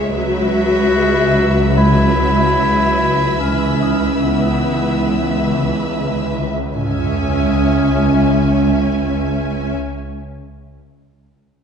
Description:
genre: cinematic, suspense film score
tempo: 74 BPM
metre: 4/4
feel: straight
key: C# minor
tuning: A4 = 440 Hz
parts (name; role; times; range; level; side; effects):
- rich studio violin section; melody; 0.0-9.7 s; E5 to G#5; -27 LUFS; left 1 dB; none
- rich studio violin section; second line; 0.0-9.7 s; B4 to E5; -25 LUFS; left 2 dB; none
- rich studio viola section; accompaniment; 0.0-9.7 s; E3 to C#4; -23 LUFS; equal; none
- rich chamber double bass section; bass; 0.0-9.7 s; C#2; -21 LUFS; right 1 dB; none
- warm chamber cello section; bass; 0.0-9.7 s; C#2; -23 LUFS; right 2 dB; none
- swarming drone; drone; 0.0-9.7 s; C#2; -23 LUFS; equal; built-in reverb
- large celesta; texture; 0.0-6.8 s; D#4 to D#6; -34 LUFS; left 4 dB; none
- clear clarinet; second line; 0.1-9.7 s; B3 to F#4; -19 LUFS; equal; none
- rich chamber violin section; texture; 0.2-9.5 s; B5 to E6; -32 LUFS; left 2 dB; none
- sub drop; sound effects; 6.8-9.8 s; none; -27 LUFS; left 1 dB; none
room: wet scoring stage reverb, RT60 1.9 s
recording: nothing above 10.7 kHz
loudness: -13 LUFS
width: side -7 dB against mid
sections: 0.0-6.7 A section; 6.7-10.0 B section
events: impact 6.7-10.0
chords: 0.1 Esus2/C#; 6.7 C#m

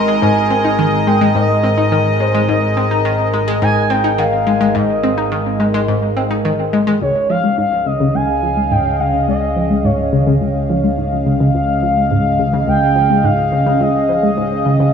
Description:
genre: ambient, sequencer-driven space music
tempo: 106 BPM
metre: 4/4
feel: straight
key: Db lydian from 7.0 s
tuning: A4 = 441 Hz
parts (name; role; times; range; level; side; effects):
- expressive portamento lead; melody; 0.0-14.9 s; C5 to Bb5; -18 LUFS; right 1 dB; chorus, analog delay
- sweeping resonant pad; sustained chords; 0.0-14.9 s; Ab3 to F5; -19 LUFS; equal; chorus
- analog pluck; riff; 0.0-14.9 s; Db2 to Eb4; -17 LUFS; left 2 dB; chorus, analog delay
- analog drone; bass; 0.0-14.9 s; Ab1 to Db2; -21 LUFS; equal; chorus
- bubbling stepped-filter texture; texture; 0.0-7.0 s; Ab4; -30 LUFS; right 2 dB; none
room: moderate plate reverb, RT60 3.4 s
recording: small room reverb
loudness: -13 LUFS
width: side -7 dB against mid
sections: 0.0-7.0 A section; 7.0-14.9 B section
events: filter sweep on synth arpeggio sound 7.0-14.9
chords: 0.0 Abadd9; 7.0 Dbadd9

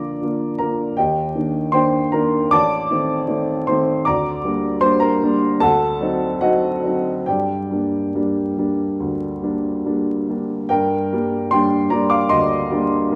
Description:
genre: classical, romantic character piece for solo piano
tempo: 69-79 BPM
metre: 4/4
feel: rubato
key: G minor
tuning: A4 = 440 Hz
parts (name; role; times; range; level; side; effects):
- warm grand piano; solo; 0.0-13.2 s; A1 to D6; -19 LUFS; equal; none
room: moderate recital hall reverb, RT60 1.4 s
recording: vinyl crackle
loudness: -19 LUFS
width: mono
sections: 0.0-10.7 A section; 10.7-13.2 A section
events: none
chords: 0.0 Bb; 1.0 Ebmaj7; 2.5 Adim; 4.1 Gm/D; 5.6 D7b9; 7.3 Gm

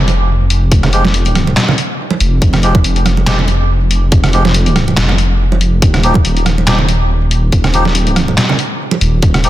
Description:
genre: deep dubstep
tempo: 141 BPM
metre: 4/4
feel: swing 55% on 16ths, half-time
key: F minor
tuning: A4 = 439 Hz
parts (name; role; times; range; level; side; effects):
- dark detuned saw bass; bass; 0.0-9.5 s; Eb1 to F1; -12 LUFS; equal; none
- trip hop sampler-style drum kit; drums; 0.1-9.5 s; handclaps, hi-hat, rim click, snare drum; -16 LUFS; left 1 dB; none
- congas; percussion; 0.1-9.4 s; none; -18 LUFS; right 4 dB; dub echo
- electronic kick drum; drums; 0.7-9.3 s; none; -13 LUFS; equal; none
- melodica; stabs; 0.9-9.5 s; F3 to G4; -20 LUFS; equal; dub echo
room: light reverb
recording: dense, heavily limited modern master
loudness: -10 LUFS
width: side -14 dB against mid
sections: 0.0-9.5 A section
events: none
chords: none

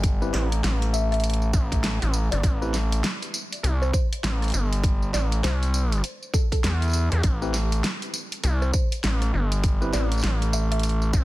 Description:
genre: glitch hop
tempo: 100 BPM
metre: 4/4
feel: swing 61% on 16ths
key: A minor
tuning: A4 = 438 Hz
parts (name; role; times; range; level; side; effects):
- gritty driven synth bass; bass; 0.0-11.2 s; G1 to E2; -23 LUFS; equal; overdrive
- electronic kick drum; drums; 0.0-11.2 s; none; -23 LUFS; equal; small room ambience
- pop drum kit; drums; 0.0-11.2 s; hi-hat, rim click, snare drum, tambourine; -30 LUFS; equal; small room ambience
- tine electric piano; stabs; 0.2-2.7, 7.4-10.1 s; C4 to B4; -33 LUFS; left 1 dB; medium stereo tremolo, sidechain pumping, dub echo
- woody wave-folded pluck; melody; 0.3-10.8 s; A4 to E5; -34 LUFS; equal; lush chorus, cassette tape, dub echo
room: digital ambience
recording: dense, heavily limited modern master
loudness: -21 LUFS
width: side -18 dB against mid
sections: 0.0-11.2 A section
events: none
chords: 0.0 Am7

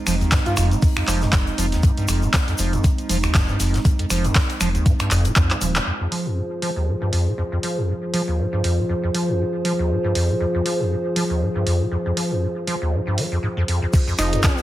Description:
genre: acid house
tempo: 119 BPM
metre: 4/4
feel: swing 56% on 16ths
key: F minor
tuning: A4 = 440 Hz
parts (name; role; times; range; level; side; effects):
- dark analog pad; sustained chords; 0.0-14.6 s; F3 to C5; -26 LUFS; right 1 dB; chorus, sidechain pumping
- acid bass, square; riff; 0.1-14.5 s; Eb2 to F3; -22 LUFS; equal; overdrive, lush chorus
- round analog bass; bass; 0.1-5.8, 14.2-14.4 s; Eb1 to F2; -23 LUFS; equal; tube saturation, sidechain pumping
- gated 80s drum kit; drums; 0.1-5.9, 13.9-14.6 s; hi-hat, snare drum; -34 LUFS; left 3 dB; high-pass filter on hats, high-pass filter on snare, high-pass filter on room
- punchy analog drum machine; drums; 0.1-14.6 s; crash cymbal, finger snaps, handclaps, hi-hat; -25 LUFS; equal; none
- tube shaker; percussion; 0.1-5.8, 13.9-14.6 s; none; -33 LUFS; left 2 dB; none
- electronic kick drum; drums; 0.3-5.5, 13.9-14.6 s; none; -18 LUFS; equal; none
- breathy alto saxophone; melody; 0.5-0.7, 14.2-14.6 s; Eb4 to F4; -27 LUFS; right 1 dB; ping-pong delay
room: light reverb, small room reverb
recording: none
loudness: -18 LUFS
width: side -14 dB against mid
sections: 0.0-5.9 A section; 5.9-13.9 B section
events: drop 0.0-5.9; drum fill 5.5-5.9; band accent 5.7; filter sweep on acid bass 5.9-13.9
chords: 0.0 Fm

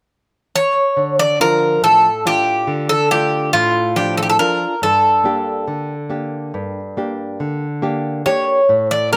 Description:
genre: greek folk, Greek bouzouki band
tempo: 140 BPM (eighths)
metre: 9/8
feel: straight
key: D harmonic minor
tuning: A4 = 439 Hz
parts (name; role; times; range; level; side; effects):
- Greek bouzouki; melody; 0.6-9.2 s; F4 to D5; -16 LUFS; equal; slapback echo
- nylon-string guitar; accompaniment; 1.0-9.2 s; G2 to G4; -24 LUFS; equal; none
room: little or no reverb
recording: recorded outdoors, with no room sound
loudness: -17 LUFS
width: mono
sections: 1.0-9.2 A section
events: none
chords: 0.0 N.C.; 1.0 Dm; 4.8 Gm

